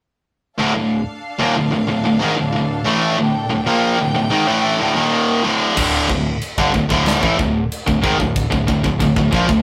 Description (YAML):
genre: heavy metal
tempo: 93 BPM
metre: 4/4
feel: straight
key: D minor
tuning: A4 = 440 Hz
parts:
  - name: rich studio string section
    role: sustained chords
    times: 0.6-5.8 s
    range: D4 to G5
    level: -27 LUFS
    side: equal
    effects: none
  - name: distorted electric guitar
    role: riff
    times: 0.6-9.6 s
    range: D2 to Bb3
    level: -22 LUFS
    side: equal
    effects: overdrive
  - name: heavy high-gain guitar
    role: riff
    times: 0.6-9.6 s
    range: D2 to Bb3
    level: -20 LUFS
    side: equal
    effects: distortion
  - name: picked electric bass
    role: bass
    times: 5.8-9.6 s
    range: D1 to Bb1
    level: -26 LUFS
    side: equal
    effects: none
  - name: tight metal drum kit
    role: drums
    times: 5.8-9.6 s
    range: china cymbal, crash cymbal, kick drum, snare drum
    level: -25 LUFS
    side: equal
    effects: none
room: moderate studio reverb, RT60 0.5 s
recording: rough rehearsal-room recording, tube saturation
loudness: -17 LUFS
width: mono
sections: 0.6-5.8 A section; 5.8-9.6 B section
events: none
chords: 0.6 Dm; 5.8 D5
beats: | 0.59 1.24 1.89 2.54 | 3.18 3.83 4.48 5.12 | 5.77 6.42 7.06 7.71 | 8.35 9.00